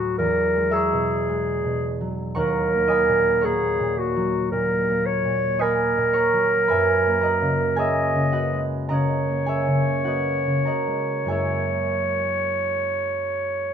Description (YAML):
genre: classical, impressionist duo for clarinet and harp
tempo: 47-56 BPM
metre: 4/4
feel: rubato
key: unclear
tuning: A4 = 440 Hz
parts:
  - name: warm clarinet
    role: melody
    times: 0.0-13.7 s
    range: F#4 to D#5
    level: -22 LUFS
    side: right 1 dB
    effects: none
  - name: concert harp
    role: accompaniment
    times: 0.0-13.7 s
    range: D2 to F#6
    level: -24 LUFS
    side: right 1 dB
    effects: none
room: moderate recital hall reverb, RT60 1.4 s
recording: close, detailed microphones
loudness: -20 LUFS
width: side -8 dB against mid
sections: 0.0-13.7 A section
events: none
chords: 0.2 Eadd9; 2.4 D#m7; 6.7 F#69; 11.3 F#9